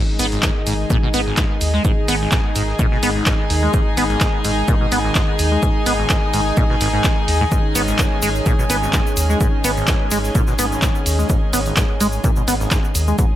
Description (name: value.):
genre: acid house.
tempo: 127 BPM.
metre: 4/4.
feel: swing 54% on 16ths.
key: unclear.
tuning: A4 = 441 Hz.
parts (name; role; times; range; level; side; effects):
lush unison pad; sustained chords; 0.0-13.4 s; D#3 to D#4; -25 LUFS; equal; chorus, sidechain pumping.
liquid acid bass; riff; 0.0-13.3 s; G#1 to B3; -22 LUFS; equal; tube saturation, wide subtle chorus, tape echo.
clear studio string section; texture; 0.0-13.4 s; D#4 to G#5; -25 LUFS; left 1 dB; sidechain pumping.
round analog bass; bass; 0.2-13.1 s; G#1 to D#2; -21 LUFS; equal; sidechain pumping.
breakbeat sampler-style drum kit; drums; 0.2-13.3 s; hi-hat, shaker, snare drum; -32 LUFS; right 2 dB; none.
punchy analog drum machine; drums; 0.2-13.1 s; handclaps, hi-hat; -24 LUFS; equal; none.
electronic kick drum; drums; 0.4-13.3 s; none; -19 LUFS; equal; none.
tube shaker; percussion; 7.5-13.3 s; none; -28 LUFS; left 2 dB; none.
room: light reverb.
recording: none.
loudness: -15 LUFS.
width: side -12 dB against mid.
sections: 0.0-13.4 A section.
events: none.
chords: 0.0 G#5.